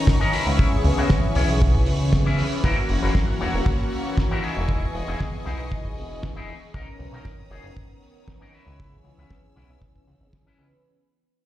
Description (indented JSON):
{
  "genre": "nu-disco, nu disco",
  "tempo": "117 BPM",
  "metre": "4/4",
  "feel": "straight",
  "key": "C# dorian",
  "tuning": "A4 = 443 Hz",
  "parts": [
    { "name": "warm analog pad", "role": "accompaniment", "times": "0.0-10.8 s", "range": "D#3 to A#5", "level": "-28 LUFS", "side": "left 1 dB", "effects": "chorus, slapback echo" },
    { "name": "clear studio string section", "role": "sustained chords", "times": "0.0-10.8 s", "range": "A#4 to E6", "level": "-35 LUFS", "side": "left 2 dB", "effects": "sidechain pumping" },
    { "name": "electric guitar with an envelope filter", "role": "riff", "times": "0.1-10.7 s", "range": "C#4 to C#5", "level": "-30 LUFS", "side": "left 2 dB", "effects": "lush chorus, low-pass filter, slapback echo" },
    { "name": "damped 70s drum kit", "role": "drums", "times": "0.1-10.7 s", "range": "hi-hat, snare drum", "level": "-30 LUFS", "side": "right 1 dB", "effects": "low-pass filter on hats, low-pass filter on snare, low-pass filter on room" },
    { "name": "kick drum", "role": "drums", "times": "0.1-10.4 s", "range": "none", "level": "-22 LUFS", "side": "equal", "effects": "none" },
    { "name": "chorused synth bass", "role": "bass", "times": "0.5-10.7 s", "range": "E1 to C#2", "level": "-24 LUFS", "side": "equal", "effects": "none" }
  ],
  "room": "light reverb, studio reverb",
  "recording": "played on a big sound system in a bare room, stone room reverb",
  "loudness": "-19 LUFS",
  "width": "side -14 dB against mid",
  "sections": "0.0-10.8 A section",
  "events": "fade-out 0.0-10.8; filter sweep on drum 0.0-10.8; filter sweep on analog synth pad 0.0-10.8",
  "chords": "0.3 C#m7; 2.6 F#7; 4.4 Emaj7; 6.7 Bmaj9; 8.5 C#m7"
}